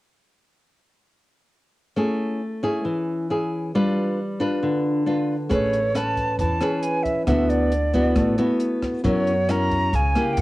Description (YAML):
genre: bossa nova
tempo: 136 BPM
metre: 4/4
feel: straight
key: A major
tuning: A4 = 442 Hz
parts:
  - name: nylon-string guitar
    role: accompaniment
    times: 2.0-10.4 s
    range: C#3 to B4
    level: -22 LUFS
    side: left 1 dB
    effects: plate reverb
  - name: silver concert flute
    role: melody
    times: 5.5-10.4 s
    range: C#5 to A#5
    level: -24 LUFS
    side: right 2 dB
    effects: cassette tape, plate reverb
  - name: upright bass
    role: bass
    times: 5.5-10.4 s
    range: A1 to F#2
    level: -26 LUFS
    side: equal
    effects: none
  - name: compact cocktail drum kit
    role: drums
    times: 5.5-10.4 s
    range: hi-hat, kick drum, rim click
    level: -29 LUFS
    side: equal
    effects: cassette tape
room: moderate studio reverb, RT60 0.5 s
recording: home recording on cassette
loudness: -20 LUFS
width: side -18 dB against mid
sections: 2.0-5.5 A section; 5.5-10.4 B section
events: none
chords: 2.0 Amaj7; 3.7 G7; 5.5 Amaj9; 7.3 D69; 9.0 F#7